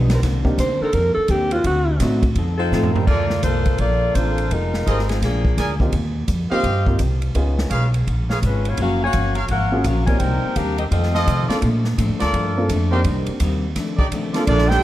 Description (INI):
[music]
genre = jazz, big band swing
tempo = 168 BPM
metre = 4/4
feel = swing 64% on 8ths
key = Bb major from 3.1 s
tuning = A4 = 436 Hz
[part]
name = vintage hollow-body jazz guitar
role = accompaniment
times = 0.0-3.0, 8.8-14.7 s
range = F2 to A4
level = -27 LUFS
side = left 3 dB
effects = none
[part]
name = warm upright piano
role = accompaniment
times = 0.0-14.5 s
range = A3 to D5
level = -26 LUFS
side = equal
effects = none
[part]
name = upright bass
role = bass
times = 0.0-14.8 s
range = F1 to C3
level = -20 LUFS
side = equal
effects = none
[part]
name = mellow saxophone section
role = sustained chords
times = 0.1-2.9, 14.5-14.6 s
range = Eb3 to Bb4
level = -29 LUFS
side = equal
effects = none
[part]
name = swinging big-band drum kit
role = drums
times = 0.1-14.8 s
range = crash cymbal, hi-hat, kick drum, ride cymbal, snare drum, toms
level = -24 LUFS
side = right 1 dB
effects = none
[part]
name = clear alto saxophone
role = melody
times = 0.6-2.0 s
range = F4 to C5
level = -20 LUFS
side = right 1 dB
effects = none
[part]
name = warm saxophone section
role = melody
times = 2.6-5.8, 8.5-11.5 s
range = F3 to Ab5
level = -23 LUFS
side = left 2 dB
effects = none
[part]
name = warm trumpet section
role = stabs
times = 3.1-14.4 s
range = Eb4 to Ab5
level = -26 LUFS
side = right 1 dB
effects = none
[part]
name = brilliant trumpet section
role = melody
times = 14.5-14.8 s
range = Bb3 to G5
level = -19 LUFS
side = right 3 dB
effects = none
[part]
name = brilliant trombone section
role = second line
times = 14.5-14.8 s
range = F3 to G4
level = -22 LUFS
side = right 5 dB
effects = none
[sound]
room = light reverb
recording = dark, warm production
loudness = -17 LUFS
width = side -14 dB against mid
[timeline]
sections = 0.0-3.1 A section; 3.1-14.5 B section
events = alto saxophone solo 0.0-3.1; drum fill 2.7-3.1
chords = 0.2 Cm9; 1.7 D7b9; 2.4 F7; 3.1 Bbmaj7; 4.5 Fm7; 5.2 Bb7; 5.9 Eb69; 7.4 Db7; 8.8 Gbmaj7; 10.2 Cm7; 10.9 F7; 11.6 Bbmaj7; 13.1 Cm7; 13.8 F13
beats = | 0.23 0.58 0.94 1.30 | 1.65 2.01 2.37 2.72 | 3.08 3.44 3.79 4.15 | 4.51 4.86 5.22 5.58 | 5.93 6.29 6.65 7.00 | 7.36 7.71 8.07 8.43 | 8.78 9.14 9.49 9.85 | 10.21 10.56 10.92 11.27 | 11.63 11.98 12.34 12.70 | 13.05 13.41 13.76 14.12 | 14.47